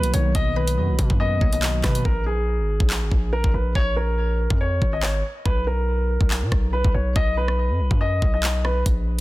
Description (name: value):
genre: hip hop, drill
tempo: 141 BPM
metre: 4/4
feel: half-time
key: unclear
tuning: A4 = 441 Hz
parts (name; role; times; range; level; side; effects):
- dark baby grand piano; melody; 0.0-8.8 s; Ab4 to D#5; -26 LUFS; equal; digital delay
- warbly lo-fi synth keys; accompaniment; 0.0-2.1 s; B2 to B3; -27 LUFS; right 1 dB; chorus
- distorted 808-style bass; bass; 0.0-9.2 s; Ab1 to B2; -23 LUFS; equal; distortion
- drill drum kit; drums; 0.0-9.2 s; handclaps, hi-hat, kick drum, rim click; -22 LUFS; equal; none
- mallet-like synth pluck; second line; 0.6-1.6 s; B4 to Db5; -37 LUFS; left 5 dB; none
room: digital ambience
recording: dense, heavily limited modern master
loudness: -19 LUFS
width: side -18 dB against mid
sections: 0.0-2.1 A section; 2.1-9.2 B section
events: hi-hats muted 2.1-8.9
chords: 0.0 Bmaj7; 2.1 Bb5; 5.5 B5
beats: | 0.35 0.77 1.20 1.62 | 2.05 2.48 2.90 3.33 | 3.75 4.18 4.60 5.03 | 5.46 5.88 6.31 6.73 | 7.16 7.58 8.01 8.43 | 8.86